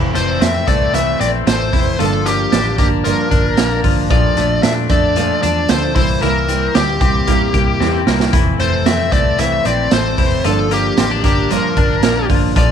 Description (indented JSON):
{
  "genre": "jangly indie pop",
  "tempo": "114 BPM",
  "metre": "4/4",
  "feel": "straight",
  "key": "F major",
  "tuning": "A4 = 440 Hz",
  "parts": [
    { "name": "fingerpicked steel-string acoustic guitar", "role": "accompaniment", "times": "0.0-12.7 s", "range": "F2 to E4", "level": "-22 LUFS", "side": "right 12 dB", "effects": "none" },
    { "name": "twelve-string electric guitar", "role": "arpeggios", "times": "0.0-12.7 s", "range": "E3 to G4", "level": "-20 LUFS", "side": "left 13 dB", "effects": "none" },
    { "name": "vintage muted fingered electric bass", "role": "bass", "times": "0.0-12.7 s", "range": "F1 to Bb2", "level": "-20 LUFS", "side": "left 1 dB", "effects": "none" },
    { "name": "dark smooth lead guitar", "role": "melody", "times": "0.2-12.7 s", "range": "G4 to E5", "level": "-19 LUFS", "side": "left 2 dB", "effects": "overdrive, slapback echo" },
    { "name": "raw garage drum kit", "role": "drums", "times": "0.2-12.7 s", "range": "hi-hat, kick drum, snare drum", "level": "-17 LUFS", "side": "right 2 dB", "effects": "none" }
  ],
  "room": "light reverb",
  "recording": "1960s-style stereo with parts hard left and right",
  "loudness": "-12 LUFS",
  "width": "side -8 dB against mid",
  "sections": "0.0-12.7 A section",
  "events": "drum fill 7.8-8.3",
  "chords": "0.0 Fmaj7; 2.0 Gm7; 4.1 Bbmaj7; 6.0 C7; 8.3 Fmaj7; 10.4 Gm7",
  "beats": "0.41 0.94 1.47 | 2.00 2.52 3.05 3.58 | 4.11 4.64 5.16 5.69 | 6.22 6.75 7.28 7.80 | 8.33 8.86 9.39 9.92 | 10.45 10.97 11.50 12.03 | 12.56"
}